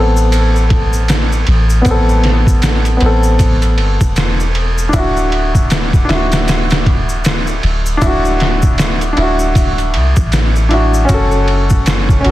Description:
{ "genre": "trip hop", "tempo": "78 BPM", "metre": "4/4", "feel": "swing 59% on 16ths", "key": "unclear", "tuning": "A4 = 440 Hz", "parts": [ { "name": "bright upright piano", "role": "accompaniment", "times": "0.0-12.3 s", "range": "B3 to A4", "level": "-17 LUFS", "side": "left 1 dB", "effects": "harmonic tremolo, low-pass filter, tape echo" }, { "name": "soft 808-style bass", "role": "bass", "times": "0.0-12.3 s", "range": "D1 to C2", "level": "-14 LUFS", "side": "equal", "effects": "tube saturation" }, { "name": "maracas", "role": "percussion", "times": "0.2-12.2 s", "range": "none", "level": "-30 LUFS", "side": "left 3 dB", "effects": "none" }, { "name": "trip hop sampler-style drum kit", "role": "drums", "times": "0.3-12.3 s", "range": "kick drum, ride cymbal, snare drum", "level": "-15 LUFS", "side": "equal", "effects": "none" } ], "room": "little or no reverb", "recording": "dense, heavily limited modern master, vinyl crackle", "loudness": "-10 LUFS", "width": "side -15 dB against mid", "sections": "0.0-12.3 A section", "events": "filter sweep on upright piano 0.0-12.3", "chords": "0.0 Amadd9; 4.9 Dadd9; 11.1 F#m", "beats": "0.32 1.09 | 1.86 2.63 3.40 4.17 | 4.94 5.71 6.48 7.25 | 8.01 8.78 9.55 10.32 | 11.09 11.86" }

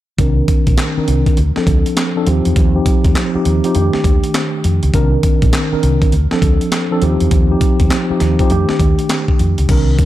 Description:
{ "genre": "R&B, new jack swing", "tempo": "101 BPM", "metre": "4/4", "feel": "swing 63% on 16ths", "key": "C dorian", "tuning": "A4 = 441 Hz", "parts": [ { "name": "mellow tine electric piano", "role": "accompaniment", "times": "0.2-10.1 s", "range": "Eb3 to Bb4", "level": "-16 LUFS", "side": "equal", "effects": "medium stereo tremolo, low-pass filter" }, { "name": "woody fretless electric bass", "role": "bass", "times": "0.2-10.1 s", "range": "Bb1 to F2", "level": "-15 LUFS", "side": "equal", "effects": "analog chorus" }, { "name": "breakbeat sampler-style drum kit", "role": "drums", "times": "0.2-10.1 s", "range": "crash cymbal, handclaps, hi-hat, kick drum, snare drum", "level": "-16 LUFS", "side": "equal", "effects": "none" } ], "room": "light reverb", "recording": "dark, warm production", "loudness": "-12 LUFS", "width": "side -14 dB against mid", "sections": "0.2-9.7 A section", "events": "filter sweep on tine electric piano 0.2-9.7", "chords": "0.2 Cm9; 1.4 Dm7; 2.3 Eb69; 3.7 F13; 4.9 Cm9; 6.1 Dm7; 7.0 Eb69; 8.5 F13", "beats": "| 0.18 0.78 1.37 1.97 | 2.56 3.15 3.75 4.34 | 4.94 5.53 6.12 6.72 | 7.31 7.91 8.50 9.10 | 9.69" }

